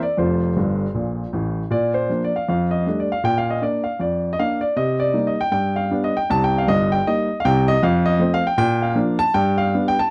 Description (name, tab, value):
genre	jazz, stride piano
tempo	157 BPM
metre	4/4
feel	swing 59% on 8ths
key	Bb major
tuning	A4 = 440 Hz
part	warm baby grand piano	solo	0.0-10.1 s	F1 to A5	-20 LUFS	equal	none
room	light reverb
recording	dry, close 1970s-style studio recording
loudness	-20 LUFS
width	mono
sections	0.0-1.7 A section; 1.7-10.1 B section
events	grand piano fill 0.6-1.7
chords	0.2 F; 1.7 Bb; 2.5 F13; 3.2 Bb; 4.8 Cm7; 5.5 G7; 6.3 Cm7; 7.8 F7; 8.6 Bb; 9.3 G7